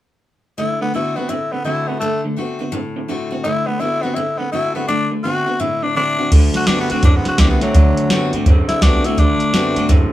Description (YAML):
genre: rockabilly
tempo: 168 BPM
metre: 4/4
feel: swing 63% on 8ths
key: D mixolydian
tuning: A4 = 438 Hz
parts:
  - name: growling tenor saxophone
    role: melody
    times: 0.6-9.9 s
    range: F#3 to F#4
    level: -20 LUFS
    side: left 1 dB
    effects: none
  - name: picked steel-string acoustic guitar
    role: accompaniment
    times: 0.6-10.1 s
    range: A2 to F#4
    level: -24 LUFS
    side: left 3 dB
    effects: none
  - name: electric guitar through a small old amp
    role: riff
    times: 0.6-10.1 s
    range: D3 to C4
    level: -22 LUFS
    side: right 1 dB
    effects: none
  - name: upright bass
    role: bass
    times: 6.3-10.1 s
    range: C2 to G2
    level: -19 LUFS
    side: equal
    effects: none
  - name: soft vintage rhythm box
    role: drums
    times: 6.3-10.0 s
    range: crash cymbal, hi-hat, kick drum, snare drum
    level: -14 LUFS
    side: equal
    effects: overdrive
room: light reverb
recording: band playing live in one room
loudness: -15 LUFS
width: side -14 dB against mid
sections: 0.6-6.3 A section; 6.3-10.1 B section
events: none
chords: 0.6 D7